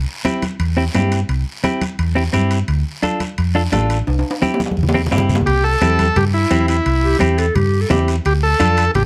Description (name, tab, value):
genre	latin, cumbia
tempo	172 BPM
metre	4/4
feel	straight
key	C major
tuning	A4 = 440 Hz
part	hollow-body short-scale fingered electric bass	bass	0.0-9.1 s	A1 to G2	-20 LUFS	equal	none
part	clean electric guitar	accompaniment	0.2-8.8 s	C4 to A4	-22 LUFS	equal	none
part	timbales	percussion	0.2-9.1 s	none	-28 LUFS	equal	none
part	congas	percussion	0.3-9.1 s	none	-26 LUFS	equal	none
part	guiro	percussion	0.3-9.1 s	none	-35 LUFS	equal	none
part	overdriven combo organ	melody	5.5-9.0 s	E4 to A4	-19 LUFS	equal	plate reverb
part	breathy clarinet	second line	7.0-8.1 s	G4 to A4	-23 LUFS	equal	none
room	light reverb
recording	close, detailed microphones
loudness	-17 LUFS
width	mono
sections	0.0-5.5 A section; 5.5-9.1 B section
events	drum fill 4.1-5.5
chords	0.0 C; 2.7 Dm; 4.1 C; 8.3 Dm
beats	0.25 0.60 0.95 | 1.29 1.64 1.99 2.34 | 2.69 3.04 3.38 3.73 | 4.08 4.43 4.78 5.12 | 5.47 5.82 6.17 6.51 | 6.86 7.21 7.56 7.90 | 8.25 8.60 8.95